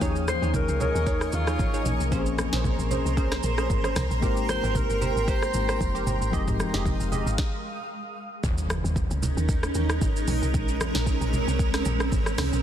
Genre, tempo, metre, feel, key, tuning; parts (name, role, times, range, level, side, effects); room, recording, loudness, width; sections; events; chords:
amapiano; 114 BPM; 4/4; swing 55% on 16ths; A4 = 440 Hz
mellow tine electric piano; accompaniment; 0.0-7.4 s; F3 to Ab4; -33 LUFS; left 8 dB
granular cloud pad; sustained chords; 0.0-12.6 s; Ab3 to Db6; -31 LUFS; right 2 dB; built-in reverb
glassy wavetable pluck; stabs; 0.0-7.2 s; Db4 to Eb5; -33 LUFS; right 4 dB; chorus, ping-pong delay
deep log drum bass; bass; 0.0-12.6 s; F1 to Eb2; -28 LUFS; equal
afro-pop drum kit; drums; 0.0-12.6 s; hi-hat, kick drum, rim click, shaker, snare drum, toms; -28 LUFS; equal; soft clipping on snare
warm alto saxophone; melody; 0.3-6.1 s; F4 to C5; -31 LUFS; left 2 dB; ping-pong delay
congas; percussion; 0.3-12.5 s; -35 LUFS; right 2 dB
impact; sound effects; 8.4-10.5 s; -36 LUFS; equal
digital ambience; dense, heavily limited modern master; -23 LUFS; side -10 dB against mid
0.0-8.4 A section; 8.4-12.6 B section
stop 7.4-8.4; drop 8.4-12.6; impact 8.4-10.5
0.0 Eb7sus4; 2.1 Bbm9; 4.2 Abmaj9; 6.3 Fm9; 8.4 Eb7sus4; 10.5 Bbm9